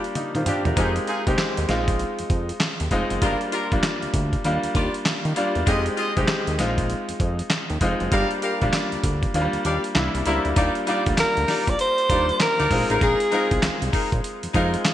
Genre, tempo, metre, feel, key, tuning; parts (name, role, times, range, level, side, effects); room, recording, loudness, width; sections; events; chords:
R&B, new jack swing; 98 BPM; 4/4; swing 63% on 16ths; A4 = 438 Hz
bright concert grand piano; accompaniment; 0.0-14.9 s; F3 to Bb4; -25 LUFS; left 1 dB
mellow horn section; stabs; 0.0-14.7 s; D4 to F5; -28 LUFS; left 2 dB; digital delay
dusty soul sampler-style drum kit; drums; 0.0-14.9 s; handclaps, hi-hat, kick drum, snare drum, toms; -25 LUFS; equal; gated reverb
fat analog bass; bass; 0.4-14.8 s; F1 to Eb3; -26 LUFS; equal
breathy alto saxophone; melody; 11.2-13.9 s; Ab4 to D5; -22 LUFS; equal
moderate plate reverb, RT60 2.8 s; bright 1980s-style digital production; -20 LUFS; side -12 dB against mid
0.0-10.6 A section; 10.6-14.9 B section
drum fill 0.2-0.8; kick muted 9.3-10.6
0.0 Ebmaj9; 0.8 Fm7; 1.7 Bb7sus4; 3.2 Gm7; 4.4 Ebmaj9; 5.7 Fm7; 6.6 Bb7sus4; 8.1 Gm7; 9.3 Ebmaj9; 10.0 C7; 10.6 Ebmaj7; 12.7 Bb7sus4